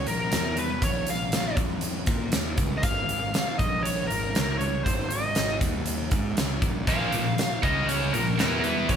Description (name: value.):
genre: hard rock.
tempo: 119 BPM.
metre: 4/4.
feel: straight.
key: Bb minor.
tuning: A4 = 440 Hz.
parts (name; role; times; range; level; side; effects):
smooth overdriven lead guitar; melody; 0.0-9.0 s; Bb4 to F5; -29 LUFS; equal; none.
fuzz picked electric bass; bass; 0.0-9.0 s; Ab1 to Bb2; -31 LUFS; equal; overdrive.
huge arena drum kit; drums; 0.1-9.0 s; hi-hat, kick drum, snare drum; -26 LUFS; equal; none.
scooped high-gain guitar; riff; 6.9-9.0 s; Bb2 to E4; -26 LUFS; equal; distortion.
room: moderate large studio reverb, RT60 1.3 s.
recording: band playing live in one room.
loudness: -23 LUFS.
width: side -8 dB against mid.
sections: 0.0-9.0 A section.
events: none.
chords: 0.1 N.C.; 0.3 E5; 0.8 Bb5; 1.6 N.C.; 2.1 Bbm; 2.8 Fm/Ab; 3.6 Bbmadd11; 4.1 Absus2; 4.4 Bbm/Db; 4.9 Ab5; 5.6 N.C.; 6.1 Absus2; 6.9 Bb5; 7.6 Db5; 8.1 Bb5; 8.4 E5.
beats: 0.33 | 0.83 1.33 1.83 2.34 | 2.84 3.35 3.85 4.35 | 4.86 5.36 5.87 6.37 | 6.87 7.38 7.88 8.39 | 8.89.